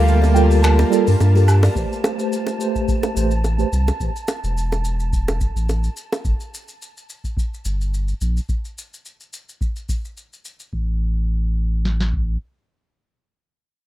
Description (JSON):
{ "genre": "sunset chillout", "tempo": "107 BPM", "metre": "4/4", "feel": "swing 54% on 16ths", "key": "unclear", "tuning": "A4 = 440 Hz", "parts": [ { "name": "dark grand piano", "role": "melody", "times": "0.0-1.4 s", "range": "F5 to A5", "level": "-27 LUFS", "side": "left 3 dB", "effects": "tape echo" }, { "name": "mellow tine electric piano", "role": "accompaniment", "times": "0.0-3.7 s", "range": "G3 to C5", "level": "-21 LUFS", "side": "moving between left 3 dB and right 7 dB", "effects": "medium stereo tremolo, auto-pan, low-pass filter, ping-pong delay" }, { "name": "shimmering ambient pad", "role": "sustained chords", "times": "0.0-1.7 s", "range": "G3 to A5", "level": "-27 LUFS", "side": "right 2 dB", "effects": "chorus, built-in reverb" }, { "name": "warm sub bass", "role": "bass", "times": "0.0-12.4 s", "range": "E1 to G2", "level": "-17 LUFS", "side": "equal", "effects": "none" }, { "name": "wind-like tuned noise texture", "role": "texture", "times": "0.0-6.3 s", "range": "A5", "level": "-34 LUFS", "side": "right 1 dB", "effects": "built-in reverb" }, { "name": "jazz brush drum kit", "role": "drums", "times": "0.1-10.7 s", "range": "finger snaps, hi-hat, shaker, woodblock", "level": "-32 LUFS", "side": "equal", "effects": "none" }, { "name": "kalimba", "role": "arpeggios", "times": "0.2-1.7 s", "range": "G4 to D5", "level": "-29 LUFS", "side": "equal", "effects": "ping-pong delay" }, { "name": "bongos", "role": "percussion", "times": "0.2-6.2 s", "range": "none", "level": "-23 LUFS", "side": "right 1 dB", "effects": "none" }, { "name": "soft vintage rhythm box", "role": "drums", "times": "1.8-12.3 s", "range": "kick drum, snare drum", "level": "-23 LUFS", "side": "equal", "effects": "none" } ], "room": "studio reverb", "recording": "rough home demo mix", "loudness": "-17 LUFS", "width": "side -14 dB against mid", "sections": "0.0-1.8 A section; 1.8-10.7 B section; 10.7-13.0 C section", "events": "break 0.0-1.8; filter sweep on tine electric piano 1.8-4.0", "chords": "0.0 Gm9; 1.8 Am9; 6.0 Gmadd9; 10.7 N.C." }